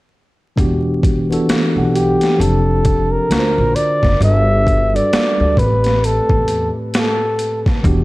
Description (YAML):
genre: R&B, neo-soul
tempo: 66 BPM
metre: 4/4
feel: swing 60% on 16ths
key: unclear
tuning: A4 = 440 Hz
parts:
  - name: mellow tine electric piano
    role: accompaniment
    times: 0.6-8.0 s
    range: A2 to F#5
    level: -19 LUFS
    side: equal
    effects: fast stereo tremolo
  - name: upright bass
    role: bass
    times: 0.6-8.0 s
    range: E1 to E2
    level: -18 LUFS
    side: equal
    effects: none
  - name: boom bap sampler-style drum kit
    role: drums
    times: 0.6-8.0 s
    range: hi-hat, kick drum, snare drum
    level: -18 LUFS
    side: equal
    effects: none
  - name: breathy flugelhorn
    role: melody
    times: 1.9-7.6 s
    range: G4 to E5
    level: -17 LUFS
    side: equal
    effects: none
room: light reverb, digital ambience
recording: vinyl crackle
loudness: -13 LUFS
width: side -20 dB against mid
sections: 0.6-8.0 A section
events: none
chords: 0.6 Em7; 2.4 F69; 3.3 D7alt; 4.2 Gmaj7; 5.6 Am9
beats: | 0.57 1.48 2.39 3.30 | 4.21 5.12 6.03 6.94 | 7.85